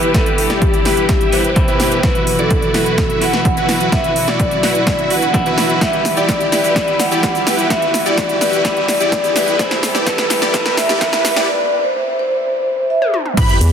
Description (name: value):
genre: EDM, festival progressive house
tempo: 127 BPM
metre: 4/4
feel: straight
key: E minor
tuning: A4 = 440 Hz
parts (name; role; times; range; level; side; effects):
- vibraphone with soft mallets; melody; 0.0-13.1 s; G4 to F#5; -18 LUFS; equal; dub echo
- electric guitar at the edge of break-up; accompaniment; 0.0-11.5 s; B2 to E4; -23 LUFS; left 2 dB; sidechain pumping
- rich studio string section; sustained chords; 0.0-13.7 s; B2 to G4; -27 LUFS; left 1 dB; none
- dense compressed supersaw; riff; 0.0-13.6 s; E4 to E5; -20 LUFS; right 1 dB; sidechain pumping, low-pass filter
- big-room dance drum kit; drums; 0.0-13.7 s; crash cymbal, hi-hat, shaker, snare drum, toms; -21 LUFS; right 1 dB; overdrive
- riser and sub drop; sound effects; 2.0-13.7 s; none; -27 LUFS; right 1 dB; none
- electronic kick drum; drums; 0.1-13.5 s; none; -19 LUFS; equal; overdrive
- wide unison lead; arpeggios; 13.4-13.6 s; B5; -20 LUFS; right 1 dB; ensemble chorus, sidechain pumping
- saturated sub bass; bass; 13.6-13.7 s; E2; -10 LUFS; equal; sidechain pumping
room: light reverb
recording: dense, heavily limited modern master, high-pass filter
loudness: -13 LUFS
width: side -8 dB against mid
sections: 0.0-13.4 A section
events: build-up 0.0-13.4; drum fill 0.0-11.5, 13.0-13.4; riser 2.0-11.5; impact 13.4-13.7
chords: 0.0 Em; 2.0 Bsus4; 5.8 Em; 9.6 C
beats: | 0.14 0.62 1.09 1.56 | 2.04 2.51 2.98 3.45 | 3.92 4.40 4.87 5.34 | 5.81 6.29 6.76 7.23 | 7.70 8.18 8.65 9.12 | 9.59 10.07 10.54 11.01 | 11.48 11.96 12.43 12.90 | 13.37